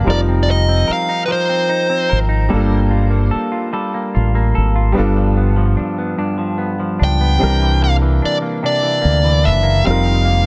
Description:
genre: slow six-eight R&B.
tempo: 49 BPM (dotted quarters).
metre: 6/8.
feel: straight.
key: G minor.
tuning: A4 = 441 Hz.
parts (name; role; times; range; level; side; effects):
semi-hollow electric guitar; second line; 0.0-10.5 s; F2 to Bb4; -23 LUFS; equal; tape echo.
clear grand piano; accompaniment; 0.0-10.5 s; E3 to Bb4; -25 LUFS; equal; none.
deep dub fingered electric bass; bass; 0.0-10.5 s; F1 to D2; -17 LUFS; equal; none.
dark smooth lead guitar; melody; 0.1-2.2, 7.0-10.5 s; B4 to G5; -21 LUFS; equal; overdrive, tape echo.
room: little or no reverb.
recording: none.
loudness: -16 LUFS.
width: mono.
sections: 0.0-10.5 A section.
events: none.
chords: 0.1 F7sus4; 2.5 Gm9; 5.0 G7; 7.4 C9; 9.9 F7sus4.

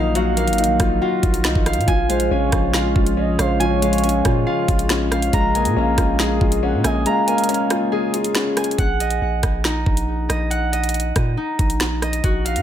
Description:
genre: hip hop, drill.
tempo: 139 BPM.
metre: 4/4.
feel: half-time.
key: unclear.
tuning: A4 = 441 Hz.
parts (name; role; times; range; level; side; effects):
gliding portamento lead; second line; 0.0-7.9 s; C5 to Gb5; -26 LUFS; right 5 dB; chorus, digital delay.
warm baby grand piano; accompaniment; 0.0-8.8 s; F3 to F5; -22 LUFS; left 4 dB; none.
dark analog pad; sustained chords; 0.0-8.8 s; Db3 to F5; -28 LUFS; right 2 dB; chorus.
concert harp; arpeggios; 0.0-12.6 s; Eb4 to Bb5; -23 LUFS; equal; digital delay.
long sustained 808-style bass; bass; 0.0-12.6 s; Ab1 to Bb2; -22 LUFS; equal; none.
drill drum kit; drums; 0.2-12.6 s; finger snaps, hi-hat, kick drum, rim click, snare drum; -21 LUFS; equal; none.
room: light reverb, digital ambience.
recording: none.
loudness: -16 LUFS.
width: side -10 dB against mid.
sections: 0.0-8.8 A section; 8.8-12.6 B section.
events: kick muted 7.1-8.8.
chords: 0.0 Ebmadd9; 1.9 Bbm7; 8.8 Gb6/Bb.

